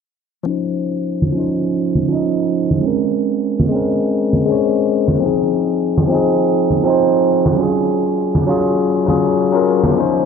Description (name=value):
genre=sunset chillout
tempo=101 BPM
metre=4/4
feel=swing 55% on 16ths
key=unclear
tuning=A4 = 445 Hz
part: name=overdriven tine electric piano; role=accompaniment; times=0.4-10.3 s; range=F3 to Eb5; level=-15 LUFS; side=moving between left 7 dB and right 6 dB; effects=auto-pan, low-pass filter, ping-pong delay
part: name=shaker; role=drums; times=0.5-10.2 s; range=none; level=-59 LUFS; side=right 3 dB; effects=none
part: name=congas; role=percussion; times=1.2-9.9 s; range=none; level=-19 LUFS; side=right 1 dB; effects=none
room=moderate lush hall reverb, RT60 2.0 s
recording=dark, warm production, low-pass filter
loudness=-14 LUFS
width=side -6 dB against mid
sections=0.5-10.3 A section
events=filter sweep on tine electric piano 0.5-10.3; filter sweep 0.5-10.3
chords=0.5 Dbmaj9; 2.8 Bbm9; 5.2 Fm7; 7.6 Gbmaj9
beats=| 0.47 1.06 1.65 2.25 | 2.84 3.44 4.03 4.62 | 5.22 5.81 6.41 7.00 | 7.59 8.19 8.78 9.38 | 9.97